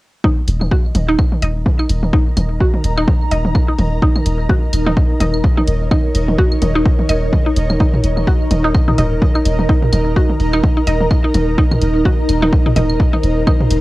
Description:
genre	minimal techno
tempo	127 BPM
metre	4/4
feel	swing 57% on 16ths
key	unclear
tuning	A4 = 440 Hz
part	mallet-like synth pluck	riff	0.2-13.5 s	Eb4 to Eb5	-21 LUFS	equal	chorus, phaser, sidechain pumping, cassette tape, analog delay
part	electronic kick drum	drums	0.2-13.6 s	none	-15 LUFS	equal	studio reverb
part	electronic toms and claves	percussion	0.2-13.7 s	none	-22 LUFS	equal	studio reverb, tape echo
part	ethereal airy pad	texture	1.0-13.8 s	Eb4 to Bb5	-21 LUFS	right 1 dB	ensemble chorus, built-in reverb, phaser, sidechain pumping, cassette tape
part	pulsing gated texture	texture	0.6-13.8 s	Eb5	-31 LUFS	right 3 dB	chorus, built-in reverb, sidechain pumping, cassette tape
part	punchy sub bass	bass	0.5-13.8 s	Eb1	-17 LUFS	equal	tube saturation, sidechain pumping
part	electronic hi-hat	drums	0.5-13.8 s	none	-27 LUFS	left 1 dB	studio reverb
room	light reverb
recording	home recording on cassette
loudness	-12 LUFS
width	side -18 dB against mid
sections	0.2-13.8 A section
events	none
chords	0.2 Eb5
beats	| 0.24 0.71 1.19 1.66 | 2.13 2.60 3.08 3.55 | 4.02 4.49 4.97 5.44 | 5.91 6.38 6.86 7.33 | 7.80 8.27 8.75 9.22 | 9.69 10.16 10.64 11.11 | 11.58 12.05 12.53 13.00 | 13.47

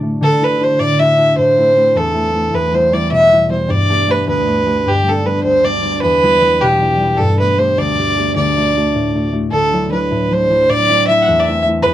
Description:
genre	celtic folk, Celtic jig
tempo	103 BPM (dotted quarters)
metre	6/8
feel	straight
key	D mixolydian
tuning	A4 = 440 Hz
part	concert harp	accompaniment	0.0-11.9 s	D2 to G4	-17 LUFS	left 1 dB	none
part	warm fiddle	melody	0.2-11.9 s	G4 to F#5	-13 LUFS	right 1 dB	none
room	little or no reverb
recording	dry, close 1970s-style studio recording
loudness	-12 LUFS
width	side -12 dB against mid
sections	0.2-9.5 A section; 9.5-11.9 A section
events	none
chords	0.2 Dadd9; 1.4 Am; 2.5 Em; 3.7 Gadd9; 6.0 Em; 7.2 Gadd9; 8.4 D; 9.5 Dadd9; 10.7 Am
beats	| 0.21 0.79 | 1.37 1.95 | 2.53 3.11 | 3.70 4.28 | 4.86 5.44 | 6.03 6.61 | 7.19 7.77 | 8.36 8.94 | 9.52 10.10 | 10.69 11.27 | 11.85

